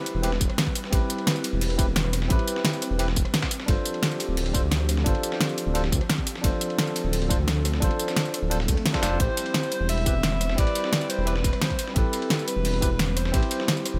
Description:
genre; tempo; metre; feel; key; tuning
liquid drum and bass; 174 BPM; 4/4; straight; A minor; A4 = 440 Hz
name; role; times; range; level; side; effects
barky tine electric piano; accompaniment; 0.0-14.0 s; C4 to C5; -33 LUFS; equal; dub echo
airy breathy pad; sustained chords; 0.0-14.0 s; F3 to B5; -37 LUFS; equal; chorus, sidechain pumping
dark detuned saw bass; bass; 0.1-14.0 s; D1 to D2; -28 LUFS; equal; none
dusty soul sampler-style drum kit; drums; 0.1-13.9 s; hi-hat, ride cymbal, snare drum; -35 LUFS; equal; high-pass filter on cymbals, high-pass filter on snare, high-pass filter on hats, high-pass filter on room
pop drum kit; drums; 0.1-13.9 s; hi-hat, rim click, snare drum, tambourine; -29 LUFS; equal; none
electronic kick drum; drums; 0.4-13.4 s; none; -28 LUFS; equal; none
swell; sound effects; 8.7-9.2 s; none; -42 LUFS; equal; none
breathy alto saxophone; melody; 9.2-13.7 s; A4 to E5; -33 LUFS; equal; delay
room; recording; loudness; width
light reverb; none; -25 LUFS; mono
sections
0.0-14.0 A section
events
none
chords
0.0 Am9 (rootless); 3.7 G7sus4; 9.2 Am9 (rootless)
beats
0.23 0.58 | 0.92 1.27 1.61 1.96 | 2.30 2.65 2.99 3.34 | 3.68 4.03 4.37 4.72 | 5.06 5.41 5.75 6.10 | 6.44 6.79 7.13 7.48 | 7.82 8.17 8.51 8.86 | 9.20 9.54 9.89 10.23 | 10.58 10.92 11.27 11.61 | 11.96 12.30 12.65 12.99 | 13.34 13.68

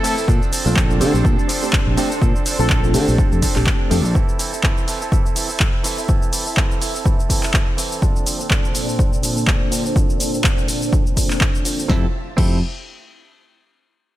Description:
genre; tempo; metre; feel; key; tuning
filtered disco house; 124 BPM; 4/4; swing 56% on 16ths; unclear; A4 = 440 Hz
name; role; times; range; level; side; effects
analog synth brass; melody; 0.0-2.8 s; A4; -27 LUFS; left 2 dB; chorus, sidechain pumping, low-pass filter, digital delay
overdriven reed electric piano; accompaniment; 0.0-4.0, 11.9-12.6 s; A3 to A4; -24 LUFS; right 1 dB; fast tremolo, phaser, vintage 12-bit sampler grit, sidechain pumping, low-pass filter
string machine, full ensemble; sustained chords; 0.0-12.1 s; Bb2 to A5; -27 LUFS; equal; ensemble chorus, sidechain pumping, low-pass filter
direct-recorded clean electric guitar; riff; 0.0-12.6 s; E3 to A4; -28 LUFS; right 5 dB; sidechain pumping, low-pass filter
punchy analog drum machine; drums; 0.0-12.5 s; crash cymbal, handclaps, hi-hat, shaker, snare drum; -23 LUFS; equal; sidechain pumping on hats, sidechain pumping on perc, sidechain pumping on cymbals
tambourine; percussion; 0.2-11.9 s; none; -45 LUFS; left 6 dB; none
overdriven fingered electric bass; bass; 0.3-4.1, 11.9-12.6 s; Bb1 to D3; -19 LUFS; equal; sidechain pumping, low-pass filter
electronic kick drum; drums; 0.3-12.5 s; none; -18 LUFS; equal; none
room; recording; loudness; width
little or no reverb; none; -16 LUFS; side -14 dB against mid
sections
0.0-11.9 A section; 11.9-13.8 B section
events
filter sweep 0.0-11.9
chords
0.3 Bbmaj9; 4.2 Am/E; 8.0 Bbmaj9; 11.9 Fmaj7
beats
| 0.28 0.77 1.25 1.73 | 2.22 2.70 3.19 3.67 | 4.15 4.64 5.12 5.61 | 6.09 6.57 7.06 7.54 | 8.03 8.51 8.99 9.48 | 9.96 10.44 10.93 11.41 | 11.89 12.38

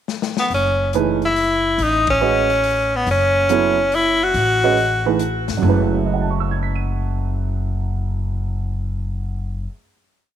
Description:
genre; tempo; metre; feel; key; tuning
modal jazz; 141 BPM; 3/4; swing 67% on 8ths; F# dorian; A4 = 440 Hz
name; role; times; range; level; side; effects
open jazz drum kit; drums; 0.1-5.5 s; hi-hat, kick drum, ride cymbal, snare drum; -29 LUFS; left 10 dB; none
edgy tenor saxophone; melody; 0.4-5.2 s; B3 to F#4; -17 LUFS; left 1 dB; tape echo
upright bass; bass; 0.5-9.6 s; F#1 to A1; -22 LUFS; left 1 dB; none
warm baby grand piano; accompaniment; 0.9-10.0 s; F#2 to D#7; -22 LUFS; right 9 dB; none
room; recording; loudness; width
moderate plate reverb, RT60 1.5 s; 1960s-style stereo with parts hard left and right; -16 LUFS; side -10 dB against mid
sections
0.0-0.5 pickup bar; 0.5-5.6 A section; 5.6-8.2 final chord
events
drum fill 0.1-0.5; band accent 2.0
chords
0.0 N.C.; 0.5 F#m11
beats
0.09 | 0.51 0.94 1.36 | 1.79 2.21 2.64 | 3.06 3.49 3.92 | 4.34 4.77 5.20 | 5.62 6.05 6.48 | 6.91 7.33 7.76

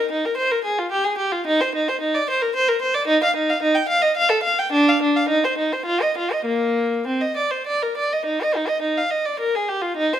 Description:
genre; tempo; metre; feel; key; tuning
classical, baroque-style suite movement for unaccompanied violin; 98-113 BPM; 3/4; rubato; Bb major; A4 = 439 Hz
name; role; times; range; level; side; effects
rich violin; solo; 0.0-10.2 s; Bb3 to G5; -18 LUFS; equal; none
room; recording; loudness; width
moderate large studio reverb, RT60 1.3 s; none; -18 LUFS; side -10 dB against mid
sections
0.0-8.3 A section; 8.3-10.2 A section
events
none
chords
none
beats
0.33 0.87 | 1.42 1.97 2.51 | 3.04 3.59 4.14 | 4.71 5.28 5.86 | 6.45 7.06 7.67 | 8.26 8.83 9.39 | 9.97

